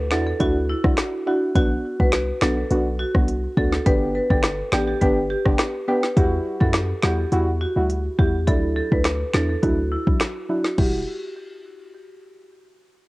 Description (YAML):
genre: dancehall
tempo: 104 BPM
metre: 4/4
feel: straight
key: E minor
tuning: A4 = 440 Hz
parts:
  - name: warm 808-style bass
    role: bass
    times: 0.0-11.1 s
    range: E1 to F#2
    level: -24 LUFS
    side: equal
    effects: none
  - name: marimba with hard mallets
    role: melody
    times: 0.1-11.1 s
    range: E4 to B4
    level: -26 LUFS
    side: equal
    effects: low-pass filter, cassette tape, tape echo
  - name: deep mellow chord stab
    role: accompaniment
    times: 0.1-11.0 s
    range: F#3 to G4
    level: -24 LUFS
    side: equal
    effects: chorus, low-pass filter, cassette tape
  - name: deep house drum kit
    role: drums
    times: 0.1-10.9 s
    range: crash cymbal, finger snaps, hi-hat, kick drum, rim click, snare drum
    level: -21 LUFS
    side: equal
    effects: none
room: little or no reverb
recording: home recording on cassette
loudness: -18 LUFS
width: side -21 dB against mid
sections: 0.0-6.2 A section; 6.2-10.8 B section; 10.8-13.1 C section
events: filter sweep 6.2-10.8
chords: 0.0 Dadd9; 1.6 Bm; 3.9 G; 6.2 Emadd9; 8.5 Dadd9; 10.8 Emadd9